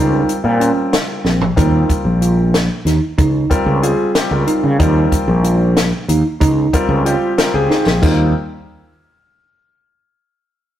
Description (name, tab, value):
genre	progressive instrumental, band music in an uneven meter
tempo	186 BPM (eighths)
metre	5/8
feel	straight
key	Eb mixolydian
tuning	A4 = 442 Hz
part	warm concert grand piano	accompaniment	0.0-8.3 s	G3 to Bb4	-19 LUFS	left 2 dB	none
part	mellow tine electric piano	arpeggios	0.0-8.3 s	C4 to F4	-19 LUFS	right 3 dB	medium stereo tremolo
part	fretless electric bass	bass	0.0-8.3 s	Bb1 to Db3	-16 LUFS	equal	none
part	compact cocktail drum kit	drums	0.3-8.2 s	crash cymbal, hi-hat, kick drum, snare drum, toms	-18 LUFS	equal	none
room	moderate stone room reverb, RT60 1.1 s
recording	rough rehearsal-room recording, tube saturation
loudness	-12 LUFS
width	side -11 dB against mid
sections	0.0-1.6 A section; 1.6-8.0 B section; 8.0-9.6 C section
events	drum fill 1.3-1.6, 7.7-8.0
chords	0.0 Dbmaj7; 1.6 Eb; 3.2 Dbmaj7; 4.8 Eb; 6.4 Dbmaj7; 8.0 Eb